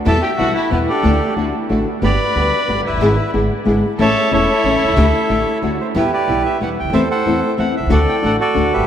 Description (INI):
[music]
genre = tango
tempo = 184 BPM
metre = 3/4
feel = rubato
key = unclear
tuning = A4 = 440 Hz
[part]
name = bandoneon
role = melody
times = 0.1-8.9 s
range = E4 to B5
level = -18 LUFS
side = right 1 dB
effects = none
[part]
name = warm studio violin section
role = second line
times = 0.1-5.6 s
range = B3 to B4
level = -24 LUFS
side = left 2 dB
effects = none
[part]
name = nylon-string guitar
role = accompaniment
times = 0.1-8.7 s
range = B2 to G#4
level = -18 LUFS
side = left 2 dB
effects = none
[part]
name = clear studio string section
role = stabs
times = 0.1-8.7 s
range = G#3 to A4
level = -28 LUFS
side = right 3 dB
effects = none
[part]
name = upright bass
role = bass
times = 0.1-8.9 s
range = E1 to E2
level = -20 LUFS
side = right 1 dB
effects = none
[sound]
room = wet cathedral reverb, RT60 6.8 s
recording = in a vast, echoing space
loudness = -14 LUFS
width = side -9 dB against mid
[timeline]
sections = 0.0-5.9 A section; 5.9-8.9 B section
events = none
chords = 0.1 Em; 1.0 Dsus4; 1.4 D; 2.0 Gadd9; 3.0 E7/G#; 4.0 A; 5.0 Dsus4; 5.6 D; 5.9 Em; 6.9 Am/E; 7.9 D